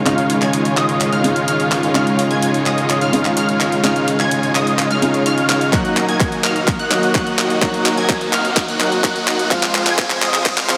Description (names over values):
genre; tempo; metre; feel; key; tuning
EDM, festival progressive house; 127 BPM; 4/4; straight; Db major; A4 = 440 Hz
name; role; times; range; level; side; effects
warm grand piano; accompaniment; 0.0-10.8 s; Db3 to Gb4; -22 LUFS; equal; sidechain pumping, tape echo
clear studio string section; sustained chords; 0.0-10.8 s; C3 to Gb4; -28 LUFS; equal; none
plucky unison lead; arpeggios; 0.0-10.8 s; Eb6 to Ab6; -26 LUFS; equal; phaser, ensemble chorus, sidechain pumping, tape echo
dense compressed supersaw; riff; 0.0-10.8 s; Ab3 to Ab5; -22 LUFS; equal; sidechain pumping, low-pass filter, tape echo
riser; sound effects; 6.4-10.8 s; none; -33 LUFS; equal; none
house drum kit; drums; 0.1-10.8 s; handclaps, hi-hat; -23 LUFS; equal; none
detuned saw bass; bass; 0.3-10.8 s; Db2 to F2; -34 LUFS; equal; none
electronic kick drum; drums; 5.7-10.6 s; none; -22 LUFS; equal; none
room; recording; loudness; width
moderate lush hall reverb, RT60 2.0 s; high-pass filter; -17 LUFS; mono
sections
0.0-10.8 A section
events
build-up 0.0-10.8; drum fill 0.0-10.8; filter sweep 0.0-10.8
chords
0.0 Dbadd9; 5.7 Ebm; 9.5 Fm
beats
| 0.06 0.54 1.01 1.48 | 1.95 2.42 2.90 3.37 | 3.84 4.31 4.79 5.26 | 5.73 6.20 6.68 7.15 | 7.62 8.09 8.57 9.04 | 9.51 9.98 10.46